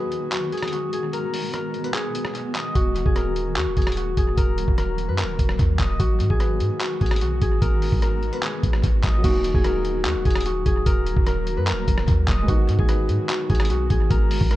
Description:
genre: hip hop, trap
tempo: 148 BPM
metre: 4/4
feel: half-time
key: Eb minor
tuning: A4 = 440 Hz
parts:
  - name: Celtic harp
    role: melody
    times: 0.0-14.6 s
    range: Gb4 to Eb5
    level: -26 LUFS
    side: left 1 dB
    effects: low-pass filter, analog delay
  - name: granular cloud pad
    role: sustained chords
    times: 0.0-14.6 s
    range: Eb3 to Gb4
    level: -32 LUFS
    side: left 1 dB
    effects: built-in reverb
  - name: lo-fi sampler-style drum kit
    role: drums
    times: 0.1-14.6 s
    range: crash cymbal, handclaps, hi-hat, kick drum, rim click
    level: -23 LUFS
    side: equal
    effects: vintage 12-bit sampler grit
  - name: clean 808-style bass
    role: bass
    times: 2.8-14.6 s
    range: Eb1 to Ab2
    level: -23 LUFS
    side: equal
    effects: none
  - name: dark grand piano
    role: accompaniment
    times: 9.2-14.6 s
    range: Gb3 to Gb4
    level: -32 LUFS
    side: right 3 dB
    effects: low-pass filter, analog delay
room: little or no reverb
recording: echo-heavy mix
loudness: -19 LUFS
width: side -16 dB against mid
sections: 0.0-9.2 A section; 9.2-14.6 B section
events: break 0.0-2.8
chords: 0.0 Abm7; 2.8 Ebm; 6.0 Abm7; 9.2 Ebm; 12.5 Abm7

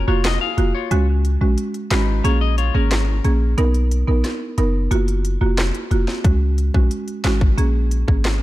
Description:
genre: dancehall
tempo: 90 BPM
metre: 4/4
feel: straight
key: F# major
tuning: A4 = 440 Hz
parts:
  - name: buzzing marimba with medium mallets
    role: accompaniment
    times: 0.0-8.2 s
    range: G#3 to A#4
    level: -23 LUFS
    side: right 3 dB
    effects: none
  - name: clean electric guitar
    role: arpeggios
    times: 0.0-3.5 s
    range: C#4 to E#5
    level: -25 LUFS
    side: left 13 dB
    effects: none
  - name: hard-hitting 808-style bass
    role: bass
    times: 0.0-8.4 s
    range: E#1 to C#2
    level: -18 LUFS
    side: equal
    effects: none
  - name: island pop drum kit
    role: drums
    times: 0.2-8.4 s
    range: handclaps, hi-hat, kick drum, rim click, snare drum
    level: -22 LUFS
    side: equal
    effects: overdrive
room: little or no reverb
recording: dark, warm production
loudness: -16 LUFS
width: side -16 dB against mid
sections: 0.0-8.4 A section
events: break 0.0-6.2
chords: 0.0 F#maj7; 0.9 C#sus4; 2.2 A#m7; 3.6 Bmaj7; 4.9 F#maj7; 6.2 C#sus4; 7.6 A#m7

